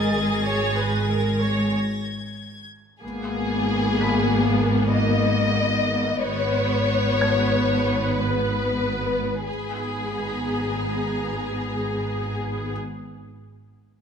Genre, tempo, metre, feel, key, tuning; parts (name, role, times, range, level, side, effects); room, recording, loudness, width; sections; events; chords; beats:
cinematic, suspense film score; 93 BPM; 5/4; straight; G# minor; A4 = 440 Hz
warm symphonic violin section; melody; 0.0-12.7 s; G#4 to D#5; -26 LUFS; left 4 dB
warm symphonic violin section; second line; 0.0-1.7 s; G#4; -31 LUFS; equal
clear symphonic viola section; accompaniment; 0.0-12.7 s; A#3 to D#5; -26 LUFS; left 1 dB
rich symphonic cello section; bass; 0.0-12.7 s; G#2 to G#3; -28 LUFS; equal
warm symphonic double bass section; bass; 0.0-12.7 s; G#1; -28 LUFS; right 3 dB
felt-muted upright piano; texture; 0.0-9.5 s; B5 to B6; -35 LUFS; left 2 dB
warm studio violin section; texture; 0.0-2.7, 9.5-12.4 s; G#5 to A6; -34 LUFS; left 3 dB
wet scoring stage reverb, RT60 2.0 s; minimal, uncompressed stereo recording; -21 LUFS; side -7 dB against mid
0.0-3.0 A section; 3.0-9.5 B section; 9.5-12.7 C section
break 1.7-3.0
0.0 G#sus2; 3.0 G#madd9
0.44 1.09 1.74 2.38 | 3.02 3.67 4.32 4.96 5.61 | 6.25 6.90 7.54 8.19 8.83 | 9.48 10.12 10.77 11.41 12.06